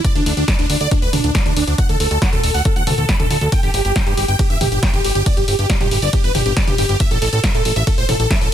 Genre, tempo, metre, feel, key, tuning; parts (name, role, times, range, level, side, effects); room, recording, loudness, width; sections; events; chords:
uplifting trance; 138 BPM; 4/4; straight; A4 = 442 Hz
supersaw chords; melody; 0.0-8.5 s; D4 to B5; -20 LUFS; right 1 dB; phaser, sidechain pumping, tape echo
electronic kick drum; drums; 0.0-8.4 s; -18 LUFS; equal
punchy analog drum machine; drums; 0.0-8.5 s; hi-hat, ride cymbal, snare drum, toms; -22 LUFS; left 1 dB; sidechain pumping on hats, sidechain pumping on toms, sidechain pumping on cymbals
fat analog bass; bass; 0.2-8.5 s; D1 to A2; -20 LUFS; equal; sidechain pumping
little or no reverb; dense, heavily limited modern master; -14 LUFS; side -10 dB against mid
0.0-8.5 A section
0.0 D5; 3.5 N.C.